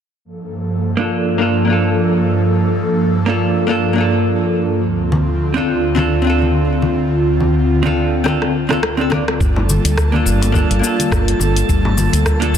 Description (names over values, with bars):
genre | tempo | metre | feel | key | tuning
sunset chillout | 105 BPM | 4/4 | swing 56% on 16ths | G minor | A4 = 439 Hz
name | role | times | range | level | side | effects
airy breathy pad | sustained chords | 0.2-12.6 s | D2 to A4 | -17 LUFS | equal | chorus
vintage hollow-body jazz guitar | accompaniment | 1.0-12.6 s | Bb3 to D5 | -18 LUFS | equal | auto-pan, low-pass filter, digital delay
congas | percussion | 5.1-12.5 s | none | -22 LUFS | left 2 dB | none
deep house drum kit | drums | 8.3-12.6 s | cabasa, hi-hat, rim click | -22 LUFS | left 1 dB | overdrive
woody fretless electric bass | bass | 9.4-12.6 s | G1 to D2 | -16 LUFS | equal | none
electronic kick drum | drums | 9.4-12.4 s | none | -18 LUFS | equal | none
drifting glass-harmonics texture | texture | 9.6-12.6 s | A5 | -27 LUFS | right 5 dB | chorus, built-in reverb
room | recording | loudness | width
light reverb | dense, heavily limited modern master | -13 LUFS | side -8 dB against mid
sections
0.3-9.4 A section; 9.4-12.6 B section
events
drum fill 8.3-9.4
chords
0.3 Gm9; 4.8 Dm7; 9.4 Gm9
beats
| 0.26 0.83 1.40 1.98 | 2.55 3.12 3.69 4.26 | 4.83 5.40 5.97 6.55 | 7.12 7.69 8.26 8.83 | 9.40 9.97 10.55 11.12 | 11.69 12.26